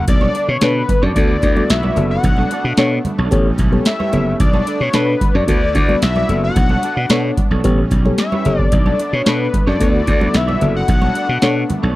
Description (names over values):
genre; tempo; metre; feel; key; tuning
early-eighties boogie funk; 111 BPM; 4/4; straight; B minor; A4 = 438 Hz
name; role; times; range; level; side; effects
fat analog lead; melody; 0.0-11.8 s; B4 to F#5; -21 LUFS; left 3 dB; none
glassy slap bass; bass; 0.0-11.9 s; F#1 to B2; -18 LUFS; equal; none
brassy analog pad; sustained chords; 0.1-12.0 s; D3 to F#4; -27 LUFS; equal; chorus
electric guitar at the edge of break-up; riff; 0.1-12.0 s; D4 to D5; -27 LUFS; right 5 dB; ensemble chorus
booming analog drum machine; drums; 0.1-11.8 s; hi-hat, kick drum, snare drum; -16 LUFS; equal; none
congas; percussion; 0.1-11.8 s; none; -24 LUFS; right 2 dB; none
mellow FM electric piano; accompaniment; 0.6-11.7 s; B3 to D5; -19 LUFS; left 2 dB; chorus
room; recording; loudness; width
little or no reverb; dry, close 1970s-style studio recording; -13 LUFS; side -17 dB against mid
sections
0.1-12.0 A section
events
none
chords
0.1 Bm9; 1.2 D6; 2.2 Bm9; 3.3 A9; 4.4 Bm9; 5.5 D6; 6.6 Bm9; 7.6 A9; 8.7 Bm9; 9.8 D6; 10.9 Bm9